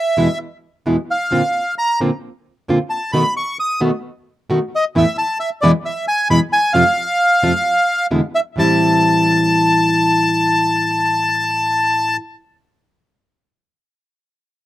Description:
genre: tango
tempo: 133 BPM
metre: 4/4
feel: rubato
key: A minor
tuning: A4 = 442 Hz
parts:
  - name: bandoneon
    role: melody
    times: 0.0-12.2 s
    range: D5 to D#6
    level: -16 LUFS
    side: equal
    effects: none
  - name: nylon-string guitar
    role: accompaniment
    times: 0.2-12.2 s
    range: E2 to F#4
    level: -17 LUFS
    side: equal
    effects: none
room: little or no reverb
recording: recorded outdoors, with no room sound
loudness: -14 LUFS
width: side -14 dB against mid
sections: 0.0-8.6 A section; 8.6-12.2 B section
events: none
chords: 0.0 E; 1.3 Bbadd9; 3.1 B7; 4.9 Esus4; 5.8 E; 6.7 F; 8.1 E7; 8.6 Am7

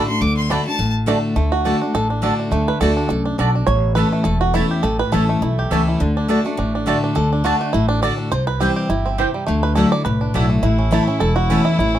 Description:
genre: bluegrass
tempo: 207 BPM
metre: 4/4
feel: swing 55% on 8ths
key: D major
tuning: A4 = 440 Hz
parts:
  - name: clear fiddle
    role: second line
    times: 0.0-0.9, 10.6-12.0 s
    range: E4 to D6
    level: -24 LUFS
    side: left 1 dB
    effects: none
  - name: picked steel-string acoustic guitar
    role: accompaniment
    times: 0.0-12.0 s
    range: E2 to F#4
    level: -20 LUFS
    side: left 2 dB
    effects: none
  - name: mandolin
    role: stabs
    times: 0.0-11.6 s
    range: A3 to A5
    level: -22 LUFS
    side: right 4 dB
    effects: none
  - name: upright bass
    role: bass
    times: 0.2-12.0 s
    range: E1 to D2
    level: -21 LUFS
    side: equal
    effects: none
  - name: bluegrass banjo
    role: melody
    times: 0.5-12.0 s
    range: D3 to D5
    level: -22 LUFS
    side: right 3 dB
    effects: none
room: light reverb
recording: close, detailed microphones, faint mains hum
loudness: -16 LUFS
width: side -11 dB against mid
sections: 0.0-1.4 A section; 1.4-10.6 A section; 10.6-12.0 A section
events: fiddle solo 0.0-1.4; five-string banjo solo 1.4-12.0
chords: 0.0 D; 3.7 A; 6.0 D; 8.3 C; 9.5 Dadd9; 10.6 A

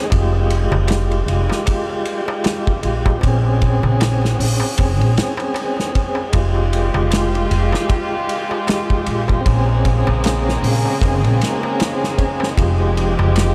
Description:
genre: trip hop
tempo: 77 BPM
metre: 4/4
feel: swing 58% on 16ths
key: F minor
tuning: A4 = 436 Hz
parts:
  - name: tonewheel organ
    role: accompaniment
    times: 0.0-13.5 s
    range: Ab3 to Ab4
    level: -24 LUFS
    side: equal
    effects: overdrive, stopped rotary speaker, tremolo, vintage 12-bit sampler grit, tape echo
  - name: upright bass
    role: bass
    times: 0.1-13.5 s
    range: F1 to Bb1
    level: -19 LUFS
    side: equal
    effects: none
  - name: loose indie drum kit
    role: drums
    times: 0.1-13.5 s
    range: hi-hat, kick drum, ride cymbal, snare drum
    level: -23 LUFS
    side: equal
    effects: none
  - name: darbuka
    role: percussion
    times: 0.1-13.5 s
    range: none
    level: -32 LUFS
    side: equal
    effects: none
  - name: dark chamber string section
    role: sustained chords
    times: 6.3-13.5 s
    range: Db3 to G4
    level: -26 LUFS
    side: equal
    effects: none
room: moderate huge ambient reverb, RT60 8.4 s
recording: dreamy mix soaked in reverb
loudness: -18 LUFS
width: mono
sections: 0.0-13.5 A section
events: none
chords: 0.1 Fmadd9; 3.2 Bbm9; 6.3 Fmadd9; 9.5 Bbm9; 12.6 Fmadd9

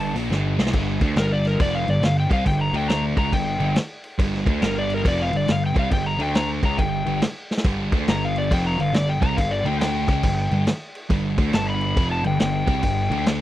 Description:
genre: blues rock power trio and southern rock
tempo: 139 BPM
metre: 4/4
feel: swing 64% on 8ths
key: unclear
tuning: A4 = 439 Hz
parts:
  - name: overdriven slide guitar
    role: melody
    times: 0.0-13.2 s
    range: Bb4 to B5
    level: -26 LUFS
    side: left 3 dB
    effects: none
  - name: sludgy distorted guitar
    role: riff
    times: 0.0-13.4 s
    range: F2 to D4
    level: -25 LUFS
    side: right 1 dB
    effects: overdrive
  - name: fuzz picked electric bass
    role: bass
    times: 0.0-13.4 s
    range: F1 to D2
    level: -25 LUFS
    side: equal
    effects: overdrive
  - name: vintage drum kit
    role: drums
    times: 0.2-13.4 s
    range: crash cymbal, hi-hat, kick drum, snare drum, splash cymbal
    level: -24 LUFS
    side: equal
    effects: none
room: little or no reverb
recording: dry, close 1970s-style studio recording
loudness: -19 LUFS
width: side -14 dB against mid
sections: 0.7-13.4 A section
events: electric slide guitar solo 0.0-13.4; drum fill 0.3-0.7, 7.4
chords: 0.0 G5; 2.7 D5; 3.1 G5; 6.1 D5; 6.6 G5; 9.6 D5; 10.0 G5

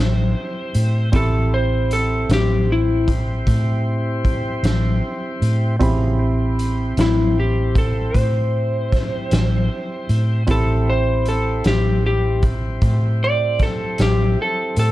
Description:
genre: slow blues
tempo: 51 BPM (dotted quarters)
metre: 12/8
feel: straight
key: A minor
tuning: A4 = 440 Hz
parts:
  - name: electric slide guitar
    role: melody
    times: 0.0-14.9 s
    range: E4 to D5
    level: -22 LUFS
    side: left 1 dB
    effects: none
  - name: warm upright piano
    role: accompaniment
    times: 0.0-14.9 s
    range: C4 to B5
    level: -27 LUFS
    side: right 4 dB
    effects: none
  - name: tonewheel organ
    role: sustained chords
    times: 0.0-14.9 s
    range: C#3 to C5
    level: -29 LUFS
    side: equal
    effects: slow rotary speaker
  - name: vintage muted fingered electric bass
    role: bass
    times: 0.0-14.9 s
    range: A1 to A2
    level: -19 LUFS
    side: equal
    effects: none
  - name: raw garage drum kit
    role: drums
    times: 0.7-14.9 s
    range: hi-hat, kick drum, snare drum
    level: -22 LUFS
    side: equal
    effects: none
room: little or no reverb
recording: dark, warm production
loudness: -16 LUFS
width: side -16 dB against mid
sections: 0.0-14.9 A section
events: electric slide guitar solo 0.0-14.9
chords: 0.0 Am9

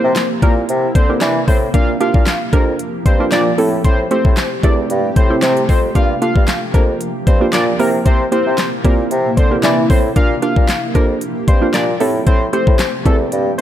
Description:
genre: dance-pop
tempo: 114 BPM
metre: 4/4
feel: straight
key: G dorian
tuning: A4 = 439 Hz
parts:
  - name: fat analog lead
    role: melody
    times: 0.0-13.6 s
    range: A4 to F5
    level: -20 LUFS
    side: left 1 dB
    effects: chorus, sidechain pumping, slapback echo, tape echo
  - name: hollow square pluck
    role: accompaniment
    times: 0.0-13.6 s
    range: A3 to C5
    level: -21 LUFS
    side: right 4 dB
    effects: chorus, sidechain pumping, slapback echo
  - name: granular cloud pad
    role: sustained chords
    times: 0.0-13.6 s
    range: C3 to G4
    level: -23 LUFS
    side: equal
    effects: built-in reverb, sidechain pumping
  - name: warm bassoon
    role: bass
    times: 0.0-13.6 s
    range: E2 to E3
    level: -18 LUFS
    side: equal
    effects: sidechain pumping
  - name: pop drum kit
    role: drums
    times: 0.2-13.6 s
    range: handclaps, hi-hat, kick drum, snare drum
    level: -14 LUFS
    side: left 1 dB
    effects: none
room: light reverb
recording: none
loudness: -12 LUFS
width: side -11 dB against mid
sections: 0.0-13.6 A section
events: break 13.3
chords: 0.0 C7; 1.7 Gm7; 3.6 Am7; 6.0 Gm7; 7.8 C7; 10.2 Gm7; 12.0 Am7

